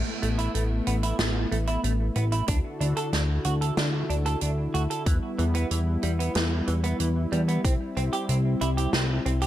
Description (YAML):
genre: synthwave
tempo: 93 BPM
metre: 4/4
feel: straight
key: A dorian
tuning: A4 = 439 Hz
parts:
  - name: brassy analog pad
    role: sustained chords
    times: 0.0-9.5 s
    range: D3 to A4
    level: -31 LUFS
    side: left 1 dB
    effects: chorus, sidechain pumping
  - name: fat analog bass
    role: bass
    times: 0.0-9.5 s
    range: A1 to E2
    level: -25 LUFS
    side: equal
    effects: none
  - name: direct-recorded clean electric guitar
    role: riff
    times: 0.2-9.5 s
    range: E3 to A4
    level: -32 LUFS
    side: right 4 dB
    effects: lush chorus, low-pass filter, tape echo
  - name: natural country drum kit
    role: drums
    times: 0.2-9.5 s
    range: hi-hat, snare drum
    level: -31 LUFS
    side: right 2 dB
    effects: gated reverb
  - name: electronic kick drum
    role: drums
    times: 2.5-7.8 s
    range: none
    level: -25 LUFS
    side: equal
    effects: none
room: studio reverb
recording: none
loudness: -23 LUFS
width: side -13 dB against mid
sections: 0.0-9.5 A section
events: none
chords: 0.0 Asus2; 2.5 Dadd9; 5.1 Em; 7.6 C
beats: 0.55 1.19 1.84 | 2.48 3.13 3.77 4.42 | 5.06 5.71 6.35 7.00 | 7.64 8.29 8.94